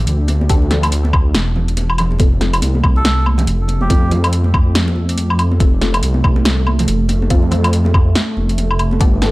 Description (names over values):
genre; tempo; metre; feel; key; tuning
deep dubstep; 141 BPM; 4/4; swing 59% on 16ths, half-time; unclear; A4 = 439 Hz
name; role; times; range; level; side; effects
dark detuned saw bass; bass; 0.0-9.3 s; E1 to F2; -15 LUFS; equal; none
deep house drum kit; drums; 0.1-9.3 s; hi-hat, snare drum, woodblock; -19 LUFS; equal; overdrive, studio reverb
congas; percussion; 0.3-9.1 s; none; -25 LUFS; right 1 dB; dub echo
filtered dub chord stab; stabs; 0.5-9.3 s; B3 to A4; -27 LUFS; left 4 dB; phaser, wide subtle chorus, dub echo
electronic kick drum; drums; 0.5-9.1 s; none; -14 LUFS; equal; studio reverb
dark analog pad; sustained chords; 2.2-9.3 s; A3; -24 LUFS; right 4 dB; chorus
melodica; melody; 3.0-4.1 s; G4 to A4; -26 LUFS; right 1 dB; dub echo
room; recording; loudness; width
digital ambience; dry, gritty hardware recording, cassette tape; -12 LUFS; side -20 dB against mid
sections
0.0-9.3 A section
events
none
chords
0.0 Dsus4; 2.2 F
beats
0.07 | 0.50 0.92 1.35 1.77 | 2.20 2.62 3.05 3.47 | 3.90 4.33 4.75 5.18 | 5.60 6.03 6.45 6.88 | 7.30 7.73 8.15 8.58 | 9.01